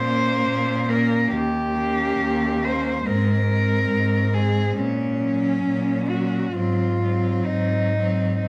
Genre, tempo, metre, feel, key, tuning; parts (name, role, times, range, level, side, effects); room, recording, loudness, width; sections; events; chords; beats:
classical, lyrical piece for cello ensemble; 58-72 BPM; 4/4; rubato; A4 = 440 Hz
rich cello; melody; 0.0-8.5 s; Db4 to C5; -27 LUFS; equal
clear cello; second line; 0.0-8.5 s; C4 to Db4; -31 LUFS; equal
rich cello; accompaniment; 0.0-8.5 s; Gb3 to Bb3; -30 LUFS; equal
clear cello; bass; 0.0-8.3 s; Eb2 to Bb2; -26 LUFS; equal
moderate recital hall reverb, RT60 1.3 s; close, detailed microphones; -22 LUFS; mono
0.0-8.5 A section
0.0 Bbm; 1.3 Eb7; 3.0 Ab; 4.8 Gb/Bb; 6.5 Ab7
0.47 | 1.33 2.19 3.05 3.91 | 4.77 5.64 6.54 7.48 | 8.47